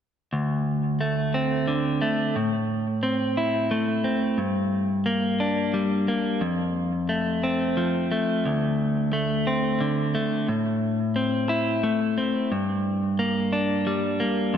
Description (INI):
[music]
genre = rock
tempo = 59 BPM (dotted quarters)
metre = 6/8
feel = straight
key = D minor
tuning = A4 = 440 Hz
[part]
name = clean electric guitar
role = solo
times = 0.3-14.6 s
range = D2 to E4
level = -22 LUFS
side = equal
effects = slapback echo, analog delay
[sound]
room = wet lush hall reverb, RT60 2.4 s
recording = big arena sound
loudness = -22 LUFS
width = side -8 dB against mid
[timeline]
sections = 0.3-14.6 A section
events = none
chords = 0.3 D5; 2.4 Am; 4.4 Gm; 6.4 F; 8.4 D5; 10.5 Am; 12.5 Gm